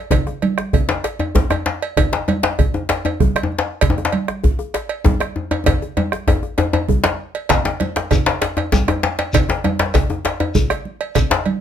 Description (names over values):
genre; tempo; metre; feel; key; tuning
west african traditional, West African drum ensemble; 130 BPM (dotted quarters); 12/8; straight; none; none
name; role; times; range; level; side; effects
bombo; percussion; 0.1-11.4 s; none; -19 LUFS; right 2 dB; none
congas; percussion; 0.1-11.6 s; none; -23 LUFS; right 6 dB; none
cowbell; percussion; 0.1-11.6 s; none; -24 LUFS; right 7 dB; none
djembe; percussion; 0.1-11.4 s; none; -23 LUFS; left 4 dB; none
djembe; percussion; 0.1-11.5 s; none; -19 LUFS; left 4 dB; none
shekere; percussion; 7.5-11.3 s; none; -26 LUFS; left 2 dB; none
room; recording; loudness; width
light reverb; close, detailed microphones; -16 LUFS; side -9 dB against mid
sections
0.0-7.5 A section; 7.5-11.6 B section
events
drum fill 5.7-7.5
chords
none